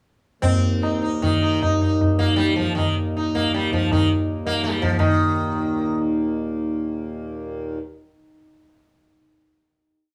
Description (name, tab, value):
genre	indian classical, Hindustani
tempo	150-188 BPM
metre	3/4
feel	straight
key	Eb raga bhupali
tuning	A4 = 440 Hz
part	sitar	melody	0.4-6.0 s	Eb3 to Eb4	-25 LUFS	equal	none
part	pedal harmonium	drone	0.4-7.8 s	Eb2 to Bb2	-28 LUFS	equal	none
part	tabla	percussion	0.4-5.1 s	none	-24 LUFS	equal	none
room	wet studio reverb, RT60 0.6 s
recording	band playing live in one room, small room ambience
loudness	-22 LUFS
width	mono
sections	0.4-5.0 theme; 5.0-7.0 final chord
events	speeding up 0.4-7.0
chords	none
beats	| 0.43 0.83 1.23 | 1.62 2.01 2.40 | 2.78 3.16 3.54 | 3.91 4.27 4.63 | 4.98 5.33 5.68 | 6.01 6.35 6.67